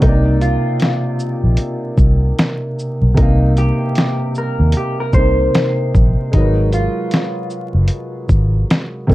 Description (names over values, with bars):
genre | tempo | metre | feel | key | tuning
lo-fi hip hop | 76 BPM | 4/4 | swing 60% on 16ths | C minor | A4 = 439 Hz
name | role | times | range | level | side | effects
electric guitar through a small old amp | melody | 0.0-8.9 s | Eb4 to C5 | -23 LUFS | left 1 dB | wide subtle chorus, analog delay, plate reverb
warm upright piano | accompaniment | 0.0-9.1 s | C3 to F5 | -20 LUFS | right 1 dB | cassette tape
vintage muted fingered electric bass | bass | 0.0-9.1 s | Gb1 to Eb2 | -14 LUFS | equal | none
dusty soul sampler-style drum kit | drums | 0.0-9.1 s | hi-hat, kick drum, shaker, snare drum | -15 LUFS | equal | overdrive
room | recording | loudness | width
light reverb | dark, warm production, vinyl crackle | -13 LUFS | side -17 dB against mid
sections
0.0-9.1 A section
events
none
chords
0.0 Cm9; 6.3 Abm9